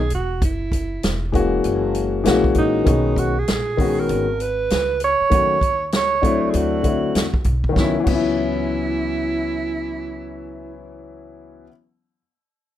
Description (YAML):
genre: hip hop, jazz-hop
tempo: 98 BPM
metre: 4/4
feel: swing 63% on 16ths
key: C# dorian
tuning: A4 = 441 Hz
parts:
  - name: mellow alto saxophone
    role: melody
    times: 0.0-11.0 s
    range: D#4 to C#5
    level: -22 LUFS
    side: right 4 dB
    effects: slapback echo
  - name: upright bass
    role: bass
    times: 0.0-11.7 s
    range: E1 to E2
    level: -27 LUFS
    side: equal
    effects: none
  - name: vintage drum kit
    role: drums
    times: 0.1-8.3 s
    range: crash cymbal, hi-hat, kick drum, snare drum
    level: -22 LUFS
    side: equal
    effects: none
  - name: dark grand piano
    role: accompaniment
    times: 1.3-11.7 s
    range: D3 to F#4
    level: -21 LUFS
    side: left 4 dB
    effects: none
room: little or no reverb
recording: rough home demo mix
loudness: -17 LUFS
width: side -11 dB against mid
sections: 0.0-7.8 A section; 7.8-10.2 B section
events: none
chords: 0.4 F#9; 2.9 B69; 5.3 D#m7b5; 6.5 D9; 7.8 C#m11